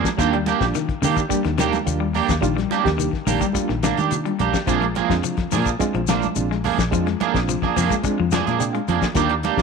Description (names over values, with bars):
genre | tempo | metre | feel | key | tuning
afrobeat | 107 BPM | 4/4 | straight | Bb mixolydian | A4 = 440 Hz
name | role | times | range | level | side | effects
electric guitar at the edge of break-up | stabs | 0.0-9.6 s | F3 to Ab4 | -23 LUFS | right 12 dB | analog chorus
warm soul drum kit | drums | 0.0-9.6 s | hi-hat, kick drum, snare drum | -26 LUFS | left 6 dB | none
shekere | percussion | 0.1-9.6 s | none | -31 LUFS | left 13 dB | none
barky reed electric piano | accompaniment | 0.2-9.6 s | G3 to G5 | -27 LUFS | right 10 dB | overdrive, medium tremolo
electric guitar at the edge of break-up | arpeggios | 0.2-9.3 s | Eb3 to Ab3 | -26 LUFS | left 14 dB | spring reverb, slapback echo
fingered electric bass | bass | 0.2-9.6 s | Bb1 to Eb3 | -25 LUFS | left 2 dB | none
congas | percussion | 0.5-9.6 s | none | -30 LUFS | right 9 dB | none
room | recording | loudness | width
light reverb, small room ambience | 1960s-style stereo with parts hard left and right | -18 LUFS | side -5 dB against mid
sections
0.0-9.6 A section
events
reed electric piano fill 8.3-9.2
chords
0.2 Ebmaj7; 4.7 Bb7